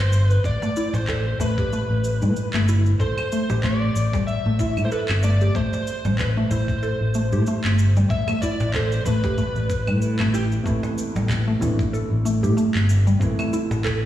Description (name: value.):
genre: organic downtempo.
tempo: 94 BPM.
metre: 4/4.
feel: swing 56% on 16ths.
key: A minor.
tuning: A4 = 440 Hz.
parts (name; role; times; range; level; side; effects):
overdriven slide guitar; melody; 0.0-10.4 s; G4 to E5; -29 LUFS; equal; tape echo.
fretless electric bass; bass; 0.0-14.1 s; G1 to A2; -21 LUFS; equal; tube saturation, sidechain pumping.
electronic cabasa, handclaps and claves; drums; 0.1-14.0 s; none; -32 LUFS; equal; overdrive.
electronic kick drum; drums; 0.4-13.4 s; none; -26 LUFS; equal; none.
mallet-like synth pluck; arpeggios; 0.6-13.9 s; G3 to A4; -26 LUFS; equal; analog chorus, tape echo.
cajon; percussion; 0.6-14.0 s; none; -31 LUFS; right 2 dB; none.
felt-muted upright piano; accompaniment; 10.6-14.1 s; C3 to E4; -28 LUFS; right 2 dB; sidechain pumping, tape echo.
room: light reverb, digital ambience.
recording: played on a big sound system in a bare room, stone room reverb.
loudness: -19 LUFS.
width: side -12 dB against mid.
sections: 0.0-14.1 A section.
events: none.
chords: 0.0 Amadd9.